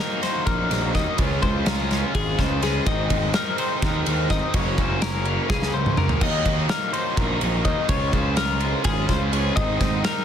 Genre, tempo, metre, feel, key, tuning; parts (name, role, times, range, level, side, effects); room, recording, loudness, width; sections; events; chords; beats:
math rock and midwest emo; 250 BPM (eighths); 7/8; straight; A4 = 439 Hz
twangy electric guitar; accompaniment; 0.0-1.2 s; barely audible
twelve-string electric guitar; arpeggios; 0.0-10.2 s; Ab4 to Eb5; -27 LUFS; left 7 dB; spring reverb
biting overdriven guitar; riff; 0.0-10.2 s; Gb2 to F4; -26 LUFS; right 1 dB
loose indie drum kit; drums; 0.2-10.2 s; crash cymbal, kick drum, ride cymbal, snare drum, toms; -24 LUFS; right 1 dB
fuzz picked electric bass; bass; 0.5-10.0 s; Gb1 to Eb2; -25 LUFS; equal; overdrive
light reverb; dense, heavily limited modern master; -20 LUFS; side -9 dB against mid
0.0-10.2 A section
drum fill 5.5-6.2
0.0 Ebm; 1.2 Dbmaj7; 2.9 Ab; 4.5 Gb; 6.2 Ebm; 7.9 Dbmaj7; 9.6 Ab
0.22 0.46 0.70 0.94 | 1.18 1.42 1.66 1.90 2.14 2.38 2.62 | 2.86 3.10 3.34 3.58 3.82 4.06 4.30 | 4.54 4.78 5.02 5.26 5.50 5.74 5.97 | 6.21 6.45 6.69 6.93 7.17 7.41 7.65 | 7.89 8.13 8.37 8.61 8.85 9.09 9.33 | 9.57 9.81 10.05